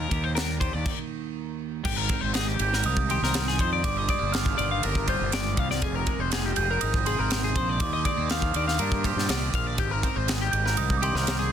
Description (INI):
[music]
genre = math rock and midwest emo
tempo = 121 BPM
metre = 4/4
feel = straight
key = Eb major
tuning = A4 = 441 Hz
[part]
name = twelve-string electric guitar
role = accompaniment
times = 0.0-11.5 s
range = Eb2 to Ab4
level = -34 LUFS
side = right 10 dB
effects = analog chorus
[part]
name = twelve-string electric guitar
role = arpeggios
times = 0.0-11.5 s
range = G4 to F5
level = -30 LUFS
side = left 11 dB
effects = none
[part]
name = fuzz fingered electric bass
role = bass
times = 0.0-11.5 s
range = F1 to G2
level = -29 LUFS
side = equal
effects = overdrive
[part]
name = crisp fusion drum kit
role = drums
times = 0.1-11.4 s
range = crash cymbal, kick drum, ride cymbal, snare drum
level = -28 LUFS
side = equal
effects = soft clipping on kick
[part]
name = glockenspiel with rubber mallets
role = melody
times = 2.6-11.5 s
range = C6 to G6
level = -30 LUFS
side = right 5 dB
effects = none
[sound]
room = little or no reverb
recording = dense, heavily limited modern master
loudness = -23 LUFS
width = side -9 dB against mid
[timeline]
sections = 0.0-1.9 A section; 1.9-11.5 B section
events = stop 0.9-1.9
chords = 0.0 Ebmaj7; 1.9 Abmaj9; 3.8 Ebmaj9/G; 5.8 Fm7; 7.8 Ebmaj9; 9.8 Abmaj9